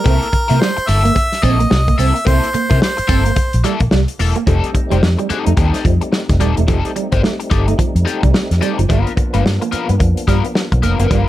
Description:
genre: funk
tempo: 109 BPM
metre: 4/4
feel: swing 60% on 16ths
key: unclear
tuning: A4 = 439 Hz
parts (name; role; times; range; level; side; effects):
- clear harmonica; melody; 0.0-3.6 s; Bb4 to E5; -18 LUFS; equal; plate reverb
- overdriven electric guitar; accompaniment; 0.0-11.3 s; Bb3 to C5; -22 LUFS; left 6 dB; wah, plate reverb
- electric guitar at the edge of break-up; riff; 0.1-11.2 s; F3 to C4; -22 LUFS; right 8 dB; none
- vintage muted fingered electric bass; bass; 0.1-11.2 s; Eb1 to C3; -15 LUFS; equal; none
- warm soul drum kit; drums; 0.1-11.3 s; hi-hat, kick drum, snare drum; -17 LUFS; equal; none
- percussive tonewheel organ; sustained chords; 4.5-11.3 s; F3 to Eb4; -25 LUFS; equal; overdrive, chorus vibrato, slow rotary speaker, plate reverb
room: little or no reverb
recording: none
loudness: -13 LUFS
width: side -14 dB against mid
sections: 0.0-4.5 A section; 4.5-11.3 B section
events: none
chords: 0.0 C6; 4.5 F9; 8.9 G7#9

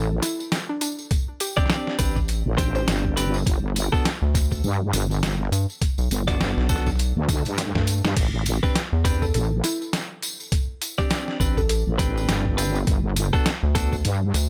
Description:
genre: glitch hop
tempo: 102 BPM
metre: 4/4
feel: swing 58% on 16ths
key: A dorian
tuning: A4 = 440 Hz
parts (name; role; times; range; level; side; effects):
- woody wave-folded pluck; melody; 0.0-3.3, 9.2-11.8 s; D4 to C5; -34 LUFS; equal; chorus, tape echo
- wobble bass; bass; 0.0-14.3 s; G1 to G2; -26 LUFS; equal; chorus
- boom bap sampler-style drum kit; drums; 0.2-14.5 s; crash cymbal, hi-hat, snare drum; -29 LUFS; equal; none
- tambourine; percussion; 0.2-14.5 s; none; -36 LUFS; equal; none
- electronic kick drum; drums; 1.1-14.0 s; none; -26 LUFS; equal; none
- clean electric guitar; stabs; 1.6-13.9 s; B3 to D5; -30 LUFS; equal; sidechain pumping, tape echo
- rubbery square bass; bass; 2.0-14.5 s; A1 to G2; -25 LUFS; equal; none
- swell; sound effects; 7.2-8.2 s; none; -39 LUFS; equal; none
room: little or no reverb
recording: none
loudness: -23 LUFS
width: mono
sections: 0.0-14.5 A section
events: drum fill 7.6-8.2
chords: 0.0 Am11; 3.5 Gmaj7; 8.2 Am11; 12.9 Gmaj9

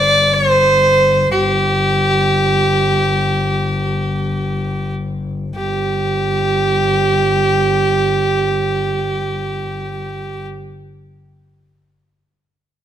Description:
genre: mongolian traditional, Mongolian folk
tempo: free time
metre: none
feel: none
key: unclear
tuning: A4 = 435 Hz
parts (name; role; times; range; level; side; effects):
- rich fiddle; melody; 0.0-10.5 s; G4 to D5; -15 LUFS; right 2 dB; none
- warm double bass; drone; 0.0-10.5 s; G1; -20 LUFS; left 3 dB; none
room: wet recital hall reverb, RT60 1.7 s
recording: close, detailed microphones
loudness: -14 LUFS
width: side -10 dB against mid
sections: 0.0-5.6 A section; 5.6-10.1 B section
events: slowing down 0.0-5.6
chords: none

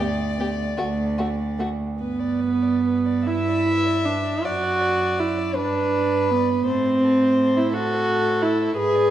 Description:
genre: classical, slow romantic movement for string quartet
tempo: 45-58 BPM (dotted quarters)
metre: 6/8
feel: rubato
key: G major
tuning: A4 = 440 Hz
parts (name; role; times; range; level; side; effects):
- warm violin; melody; 0.0-9.1 s; A4 to E5; -36 LUFS; left 6 dB; none
- warm violin; second line; 0.0-9.1 s; F#4 to E5; -25 LUFS; equal; none
- dark viola; accompaniment; 0.0-9.1 s; A3 to G#4; -21 LUFS; right 2 dB; none
- warm cello; bass; 0.0-9.1 s; D2 to A2; -28 LUFS; right 2 dB; none
room: moderate recital hall reverb, RT60 1.6 s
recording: nothing above 10.8 kHz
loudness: -19 LUFS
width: side -11 dB against mid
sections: 0.0-2.0 A section; 2.0-9.1 B section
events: none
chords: 0.0 N.C.; 0.8 D5; 2.0 G; 4.4 D7/F#; 5.6 G; 6.7 Am

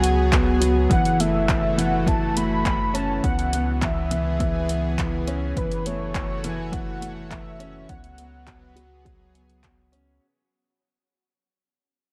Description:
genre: piano and strings electronica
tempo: 103 BPM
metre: 4/4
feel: straight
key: unclear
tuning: A4 = 440 Hz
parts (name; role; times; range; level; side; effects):
- warm velvety synth lead; melody; 0.0-9.6 s; B4 to B5; -31 LUFS; equal; chorus
- lush unison pad; sustained chords; 0.0-10.2 s; E3 to C#5; -34 LUFS; equal; chorus, sidechain pumping
- dark grand piano; riff; 0.0-10.2 s; E3 to F#4; -28 LUFS; equal; digital delay
- warm sub bass; bass; 0.0-10.2 s; F#1 to C#2; -30 LUFS; equal; sidechain pumping
- deep house drum kit; drums; 0.0-10.0 s; handclaps, hi-hat; -32 LUFS; equal; overdrive, small room ambience
- electronic kick drum; drums; 0.3-9.8 s; none; -28 LUFS; equal; overdrive, small room ambience
room: light reverb, digital ambience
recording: none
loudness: -23 LUFS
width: mono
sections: 0.0-10.2 A section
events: drop 0.0-10.2; fade-out 0.9-10.2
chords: 0.0 C#7sus4; 0.9 F#m7; 3.2 C#m7; 5.6 F#m7; 7.9 C#7sus4

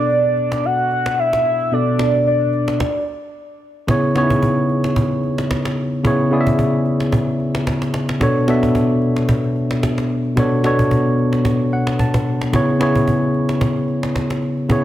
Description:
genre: amapiano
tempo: 111 BPM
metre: 4/4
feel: swing 55% on 16ths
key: C# phrygian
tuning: A4 = 440 Hz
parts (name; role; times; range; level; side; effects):
- soft octave-layered synth lead; melody; 0.0-3.0 s; D5 to F#5; -18 LUFS; equal; chorus, phaser, low-pass filter, tape echo
- tine electric piano; accompaniment; 0.0-14.8 s; B2 to A5; -17 LUFS; equal; low-pass filter
- cajon; drums; 0.1-14.8 s; none; -22 LUFS; equal; none
room: studio ambience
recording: none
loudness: -15 LUFS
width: side -13 dB against mid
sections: 0.0-3.9 A section; 3.9-14.8 B section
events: filter sweep 0.0-3.9; stop 2.8-3.9; tine electric piano fill 11.5-12.5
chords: 0.0 Bm7; 3.9 C#m7; 8.2 Bm7; 12.5 C#m7

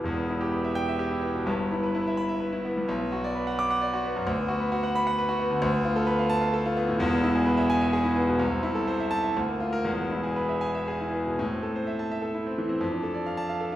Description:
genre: classical, virtuoso piano study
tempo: 115-133 BPM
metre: 3/4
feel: rubato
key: E minor, A minor from 5.6 s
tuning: A4 = 440 Hz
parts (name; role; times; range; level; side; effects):
- bright concert grand piano; solo; 0.0-13.8 s; E1 to D6; -24 LUFS; equal; none
room: wet recital hall reverb, RT60 1.4 s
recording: heard from further back in the room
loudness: -24 LUFS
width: side -13 dB against mid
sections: 0.0-11.4 A section; 11.4-13.8 B section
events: none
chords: 0.0 Em; 1.5 Em/G; 2.9 Bm; 4.3 Bm/D; 5.6 Bm7b5/D; 7.0 E; 8.4 Am/C; 9.4 Bb/D; 9.9 E; 11.4 Am; 12.8 Dm/F

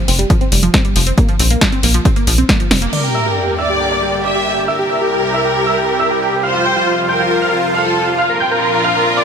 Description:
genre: uplifting trance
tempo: 137 BPM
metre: 4/4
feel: straight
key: G dorian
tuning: A4 = 440 Hz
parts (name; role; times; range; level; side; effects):
- wide unison pluck; arpeggios; 0.0-2.9 s; F3 to C4; -20 LUFS; right 3 dB; sidechain pumping, ping-pong delay
- tight sequencer bass; bass; 0.1-2.9 s; F1 to Bb1; -15 LUFS; equal; sidechain pumping
- house drum kit; drums; 0.1-3.0 s; crash cymbal, hi-hat, snare drum; -18 LUFS; left 1 dB; none
- electronic kick drum; drums; 0.3-2.6 s; none; -15 LUFS; equal; none
- dense compressed supersaw; melody; 2.9-9.2 s; F4 to G5; -16 LUFS; equal; vintage 12-bit sampler grit, sidechain pumping, low-pass filter, ping-pong delay
- clear grand piano; second line; 2.9-9.2 s; F5 to G6; -24 LUFS; right 2 dB; none
- rich symphonic violin section; second line; 2.9-9.2 s; F4 to E5; -17 LUFS; equal; ping-pong delay
- supersaw pad; sustained chords; 2.9-9.2 s; C2 to D5; -21 LUFS; right 1 dB; sidechain pumping
- sub drop; sound effects; 2.9-4.7 s; none; -24 LUFS; left 1 dB; none
room: light reverb, digital ambience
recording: none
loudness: -12 LUFS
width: side -7 dB against mid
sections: 0.0-2.9 A section; 2.9-9.2 B section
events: filter sweep on synth pluck 0.0-2.9; drum fill 2.7; band accent 2.7; impact 2.9-4.7; filter sweep on supersaw synth 2.9-9.2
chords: 0.0 Fsus2; 1.2 Bbsus2; 2.9 Gm; 4.7 C; 6.4 Fsus2; 8.2 Bbadd9

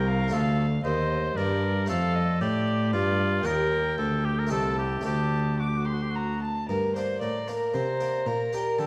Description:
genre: classical, baroque-style sonata movement with continuo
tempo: 114 BPM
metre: 3/4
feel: straight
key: G minor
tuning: A4 = 440 Hz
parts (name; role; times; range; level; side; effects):
- clear oboe; melody; 0.0-8.9 s; F4 to Bb5; -33 LUFS; equal; none
- dark violin; second line; 0.0-8.9 s; A4 to D6; -34 LUFS; equal; none
- harpsichord; accompaniment; 0.0-8.9 s; C2 to G4; -33 LUFS; equal; none
- rich cello; bass; 0.0-8.9 s; C2 to D3; -30 LUFS; equal; none
room: moderate recital hall reverb, RT60 1.3 s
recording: vinyl crackle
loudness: -27 LUFS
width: mono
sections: 0.0-6.7 A section; 6.7-8.9 A section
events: none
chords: 0.3 Dm; 1.9 Dm/F; 3.5 Eb; 4.5 Am7b5/C; 5.1 D5; 6.7 Gm; 8.3 Gm/Bb

